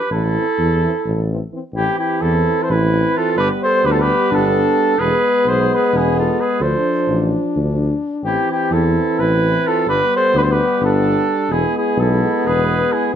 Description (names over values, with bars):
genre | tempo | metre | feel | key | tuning
balkan folk | 258 BPM (eighths) | 7/8 | straight | A minor | A4 = 440 Hz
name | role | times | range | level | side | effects
mellow flugelhorn | melody | 0.0-13.1 s | G4 to C5 | -18 LUFS | right 1 dB | slapback echo
clear clarinet | second line | 0.0-13.1 s | D4 to A4 | -23 LUFS | right 4 dB | none
mellow tuba | bass | 0.1-13.2 s | E1 to E2 | -19 LUFS | left 1 dB | none
mellow French horn | accompaniment | 0.4-13.2 s | B3 to D4 | -22 LUFS | left 6 dB | none
warm euphonium | accompaniment | 0.4-13.2 s | E3 to G#3 | -24 LUFS | right 4 dB | none
room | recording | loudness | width
light reverb | close, detailed microphones | -14 LUFS | side -9 dB against mid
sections
0.0-1.7 A section; 1.7-13.2 B section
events
none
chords
0.1 Am; 3.4 G; 5.0 E; 6.6 Dm; 8.2 Am; 9.9 G; 11.5 E